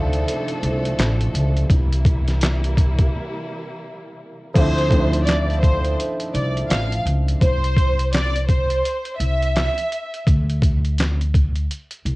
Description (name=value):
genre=hip hop, boom-bap hip-hop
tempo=84 BPM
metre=4/4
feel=swing 60% on 16ths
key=D minor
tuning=A4 = 439 Hz
part: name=warm upright piano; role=accompaniment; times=0.0-7.4 s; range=F3 to E4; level=-25 LUFS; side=right 1 dB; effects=cassette tape
part: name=warm studio string section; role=sustained chords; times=0.0-4.5 s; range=C3 to A4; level=-29 LUFS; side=equal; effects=cassette tape
part: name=upright bass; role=bass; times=0.0-12.2 s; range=A1 to D2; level=-20 LUFS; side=equal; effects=none
part: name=trip hop sampler-style drum kit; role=drums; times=0.1-12.2 s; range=crash cymbal, handclaps, hi-hat, kick drum, snare drum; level=-20 LUFS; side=equal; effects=cassette tape
part: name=warm studio violin section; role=melody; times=4.5-10.2 s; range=C5 to F5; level=-24 LUFS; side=equal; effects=cassette tape, tape echo
room=light reverb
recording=home recording on cassette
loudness=-17 LUFS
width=side -21 dB against mid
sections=0.0-4.6 A section; 4.6-12.2 B section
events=break 0.0-1.7, 3.1-4.6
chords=0.0 Dm7; 1.7 C7; 4.6 Dm7; 7.4 C; 10.3 D5